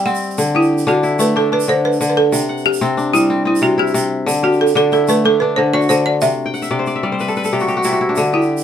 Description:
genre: west african traditional, West African string and xylophone music.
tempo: 123 BPM (dotted quarters).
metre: 12/8.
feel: straight.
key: D mixolydian.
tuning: A4 = 440 Hz.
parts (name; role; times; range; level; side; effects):
balafon; melody; 0.0-8.6 s; E4 to F#5; -15 LUFS; right 1 dB; none.
kora; arpeggios; 0.0-8.6 s; C3 to G5; -16 LUFS; left 2 dB; none.
tube shaker; percussion; 0.1-8.6 s; none; -28 LUFS; right 7 dB; none.
room: wet studio reverb, RT60 0.5 s.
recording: band playing live in one room.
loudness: -13 LUFS.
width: side -9 dB against mid.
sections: 0.4-8.6 A section.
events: kora fill 6.5-8.2.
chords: 0.4 D5; 2.3 C; 4.3 D; 6.2 C.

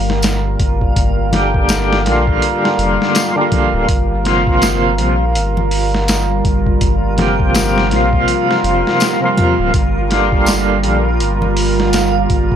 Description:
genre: trip hop.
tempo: 82 BPM.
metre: 4/4.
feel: swing 60% on 16ths.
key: G minor.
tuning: A4 = 443 Hz.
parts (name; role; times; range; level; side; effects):
deep dark ambient pad; sustained chords; 0.0-12.6 s; G3 to Bb4; -19 LUFS; right 2 dB; chorus, built-in reverb.
soft dub sub bass; bass; 0.0-12.6 s; D1 to Bb1; -18 LUFS; equal; tube saturation.
backwards swelling texture; texture; 0.2-12.6 s; F4; -25 LUFS; right 1 dB; built-in reverb.
boom bap sampler-style drum kit; drums; 0.1-12.6 s; hi-hat, kick drum, snare drum; -18 LUFS; equal; none.
tambourine and congas; percussion; 0.2-12.1 s; none; -23 LUFS; left 2 dB; none.
overdriven tonewheel organ; accompaniment; 1.3-11.1 s; C3 to G4; -17 LUFS; equal; slow rotary speaker, tremolo, tape echo.
room: little or no reverb.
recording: dry, gritty hardware recording.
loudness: -12 LUFS.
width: side -9 dB against mid.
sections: 0.0-12.6 A section.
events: none.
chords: 0.0 Gm7; 3.9 Fsus4/G; 9.7 Gm7.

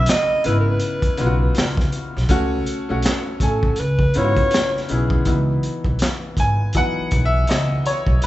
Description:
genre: R&B, neo-soul.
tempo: 81 BPM.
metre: 4/4.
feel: swing 60% on 16ths.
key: C# minor.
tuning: A4 = 438 Hz.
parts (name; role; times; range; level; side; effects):
dark alto saxophone; melody; 0.0-4.9 s; A4 to E5; -21 LUFS; right 1 dB; none.
bright grand piano; accompaniment; 0.0-8.3 s; C#3 to G#5; -23 LUFS; left 2 dB; none.
upright bass; bass; 0.0-8.3 s; G#1 to G#2; -21 LUFS; equal; none.
crunchy breakbeat drum kit; drums; 0.1-8.3 s; handclaps, hi-hat, kick drum, snare drum; -21 LUFS; equal; none.
room: light reverb.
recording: nothing above 8.0 kHz.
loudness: -17 LUFS.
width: side -15 dB against mid.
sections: 0.0-5.3 A section; 5.3-8.3 B section.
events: grand piano solo 5.3-8.3.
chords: 0.0 C#m9; 2.3 A6; 3.8 C#m11.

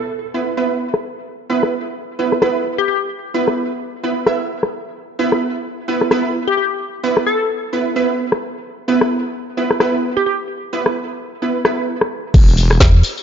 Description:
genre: bass house.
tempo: 130 BPM.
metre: 4/4.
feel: swing 58% on 16ths.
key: E minor.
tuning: A4 = 444 Hz.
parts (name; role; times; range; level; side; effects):
glassy wavetable pluck; melody; 0.0-3.0, 6.5-10.3 s; G4 to A4; -20 LUFS; left 2 dB; chorus, tape echo.
orchestra-hit-like synth stab; stabs; 0.3-11.9 s; B3 to E5; -19 LUFS; right 3 dB; built-in reverb, cassette tape, sidechain pumping, tape echo.
garage drum kit; drums; 0.9-13.2 s; crash cymbal, hi-hat, rim click, snare drum, tambourine; -19 LUFS; left 2 dB; low-pass filter on hats, low-pass filter on snare, low-pass filter on cymbals, low-pass filter on perc, low-pass filter on room.
wobble bass; bass; 12.3-12.8 s; E1; -14 LUFS; equal; chorus, tube saturation, sidechain pumping.
electronic kick drum; drums; 12.3-12.9 s; none; -10 LUFS; equal; none.
metallic FM bass; bass; 12.8-13.0 s; E1; -11 LUFS; equal; overdrive, sidechain pumping.
room: light reverb.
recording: nothing above 7.5 kHz.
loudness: -15 LUFS.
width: side -8 dB against mid.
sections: 0.0-12.3 A section.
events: none.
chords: 0.0 E5; 12.3 N.C..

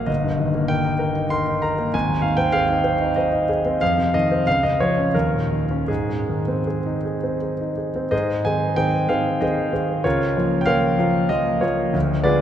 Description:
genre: classical, romantic character piece for solo piano.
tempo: 76-100 BPM.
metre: 3/4.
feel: rubato.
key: Ab major.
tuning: A4 = 437 Hz.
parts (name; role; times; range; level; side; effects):
clear grand piano; solo; 0.0-12.4 s; G1 to C6; -18 LUFS; equal; none.
room: wet cathedral reverb, RT60 5.2 s.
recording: recorded in a church or concert hall.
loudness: -18 LUFS.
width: side -10 dB against mid.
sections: 0.0-8.1 A section; 8.1-12.4 B section.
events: none.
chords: 0.1 Eb/G; 1.9 Ab; 3.8 F5; 4.5 Dbadd9; 5.1 Eb5; 5.9 Ab; 10.0 Bbm/Db.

